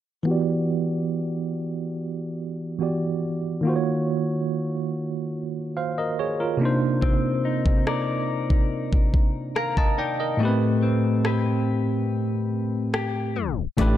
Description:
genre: contemporary R&B.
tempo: 71 BPM.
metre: 4/4.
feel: straight.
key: unclear.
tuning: A4 = 440 Hz.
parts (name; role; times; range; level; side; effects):
bell-like tine electric piano; accompaniment; 0.2-14.0 s; A2 to Bb5; -24 LUFS; right 2 dB; medium stereo tremolo, low-pass filter.
direct-recorded clean electric guitar; arpeggios; 7.0-14.0 s; A3 to D5; -28 LUFS; left 9 dB; lush chorus, low-pass filter.
smooth R&B drum kit; drums; 7.0-14.0 s; hi-hat, kick drum, rim click; -23 LUFS; equal; none.
saturated sub bass; bass; 13.8-14.0 s; A1; -22 LUFS; equal; none.
soft synth bell; texture; 13.8-14.0 s; E5; -38 LUFS; right 4 dB; chorus, phaser.
room: digital ambience.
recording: dark, warm production, tape stop.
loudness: -22 LUFS.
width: side -12 dB against mid.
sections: 0.3-13.8 A section.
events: filter sweep 0.3-13.8; kick muted 10.4-13.8; tape stop 13.4-13.8.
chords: 0.3 Em9; 3.6 D#m9; 6.6 Cm9; 10.4 Am9.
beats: | 0.26 1.11 1.95 2.80 | 3.64 4.49 5.33 6.18 | 7.02 7.87 8.71 9.56 | 10.40 11.25 12.09 12.94 | 13.78.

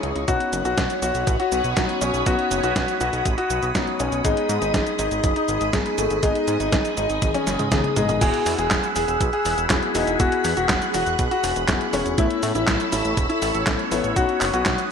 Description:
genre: italo disco.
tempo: 121 BPM.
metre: 4/4.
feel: straight.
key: E major.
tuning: A4 = 441 Hz.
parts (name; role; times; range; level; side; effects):
phased string machine; sustained chords; 0.0-14.9 s; F#4 to F#6; -26 LUFS; equal; ensemble chorus, phaser.
dark concert grand piano; stabs; 0.0-14.9 s; G#3 to G#4; -28 LUFS; left 5 dB; ping-pong delay.
fat analog bass; bass; 0.0-14.8 s; E1 to A2; -28 LUFS; right 1 dB; none.
clean 12-bit digital drum machine; drums; 0.0-14.9 s; cabasa, crash cymbal, handclaps, hi-hat, snare drum, toms; -26 LUFS; right 1 dB; studio reverb, gated reverb.
clear grand piano; melody; 0.3-14.8 s; G#3 to G#4; -24 LUFS; left 2 dB; ping-pong delay.
electronic kick drum; drums; 0.3-14.8 s; none; -25 LUFS; right 1 dB; studio reverb.
room: light reverb.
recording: none.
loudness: -19 LUFS.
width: side -6 dB against mid.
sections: 0.0-8.2 A section; 8.2-14.9 B section.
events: drum fill 7.2-8.2.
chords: 0.3 Badd9; 4.2 G#m; 8.2 Eadd9; 12.2 Aadd9; 14.2 Badd9.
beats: | 0.28 0.77 1.27 1.77 | 2.26 2.76 3.25 3.75 | 4.25 4.74 5.24 5.73 | 6.23 6.72 7.22 7.72 | 8.21 8.71 9.20 9.70 | 10.20 10.69 11.19 11.68 | 12.18 12.68 13.17 13.67 | 14.16 14.66.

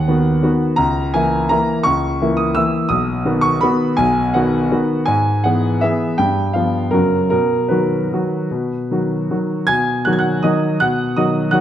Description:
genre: classical, piano waltz.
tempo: 147-180 BPM.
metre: 3/4.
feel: rubato.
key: B major.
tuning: A4 = 440 Hz.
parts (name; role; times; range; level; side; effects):
clear concert grand piano; solo; 0.0-11.6 s; B1 to G#6; -15 LUFS; equal; none.
room: wet recital hall reverb, RT60 1.5 s.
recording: dark, warm production.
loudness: -15 LUFS.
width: side -11 dB against mid.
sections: 0.0-9.7 A section; 9.7-11.6 A section.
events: none.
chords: 0.0 B/D#; 0.8 A#dim/C#; 2.9 B; 5.1 E/G#; 6.2 G7; 6.9 F#; 7.3 B.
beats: 0.07 0.43 | 0.78 1.14 1.50 | 1.86 2.21 2.56 | 2.90 3.25 3.62 | 3.98 4.34 4.72 | 5.08 5.45 5.82 | 6.18 6.54 6.92 | 7.32 7.71 8.12 | 8.51 8.90 9.30 | 9.69 10.06 10.44 | 10.81 11.16 11.53.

